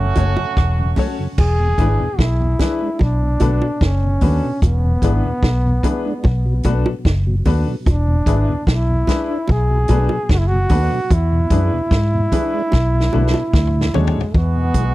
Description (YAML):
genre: roots reggae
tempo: 74 BPM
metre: 4/4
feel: straight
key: E mixolydian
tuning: A4 = 440 Hz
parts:
  - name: warm horn section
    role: second line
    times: 0.0-0.9, 14.3-14.9 s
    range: G#3 to F#4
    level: -24 LUFS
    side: right 6 dB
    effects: tape echo
  - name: mellow tonewheel organ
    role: accompaniment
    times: 0.0-14.9 s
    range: D2 to E4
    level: -25 LUFS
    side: left 1 dB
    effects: chorus vibrato, slow rotary speaker, slapback echo
  - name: vintage muted fingered electric bass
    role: bass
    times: 0.0-14.9 s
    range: E1 to G#2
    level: -17 LUFS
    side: equal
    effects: none
  - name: warm upright piano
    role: stabs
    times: 0.2-14.2 s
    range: C#4 to C#5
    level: -25 LUFS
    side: left 7 dB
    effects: none
  - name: vintage drum kit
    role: drums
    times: 0.2-14.9 s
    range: crash cymbal, hi-hat, kick drum, rim click, snare drum, toms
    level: -18 LUFS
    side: equal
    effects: none
  - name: bongos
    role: percussion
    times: 0.2-14.5 s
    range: none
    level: -24 LUFS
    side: right 4 dB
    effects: none
  - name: breathy trombone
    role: melody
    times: 1.4-14.8 s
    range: G#3 to G#4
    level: -22 LUFS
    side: right 1 dB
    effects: tape echo
room: little or no reverb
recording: dry, close 1970s-style studio recording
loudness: -15 LUFS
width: side -17 dB against mid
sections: 0.0-1.4 A section; 1.4-14.3 B section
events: drum fill 12.7-14.3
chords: 0.0 F#m; 1.4 E7; 3.0 Bm7; 4.6 E7; 6.2 Bm7; 7.9 E7; 9.5 Bm7; 11.1 E7; 12.7 Bm7; 13.5 Dmaj7; 14.3 E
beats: 0.57 | 1.38 2.19 3.00 3.81 | 4.62 5.43 6.24 7.05 | 7.86 8.67 9.48 10.29 | 11.10 11.91 12.72 13.54 | 14.35